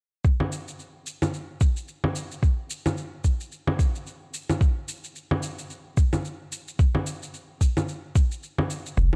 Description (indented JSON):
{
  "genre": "organic downtempo",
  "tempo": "110 BPM",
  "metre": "4/4",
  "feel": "swing 58% on 16ths",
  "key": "unclear",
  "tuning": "A4 = 439 Hz",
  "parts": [
    { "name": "electronic kick drum", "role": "drums", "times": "0.2-9.1 s", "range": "none", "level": "-23 LUFS", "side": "equal", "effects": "none" },
    { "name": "shaker and congas", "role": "drums", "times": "0.2-9.2 s", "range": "none", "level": "-31 LUFS", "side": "equal", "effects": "none" },
    { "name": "round analog bass", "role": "bass", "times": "9.0-9.1 s", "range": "F1", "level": "-22 LUFS", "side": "equal", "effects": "sidechain pumping" }
  ],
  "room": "light reverb",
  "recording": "dark, warm production",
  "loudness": "-26 LUFS",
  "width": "mono",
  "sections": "0.2-9.0 A section",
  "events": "none",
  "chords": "none"
}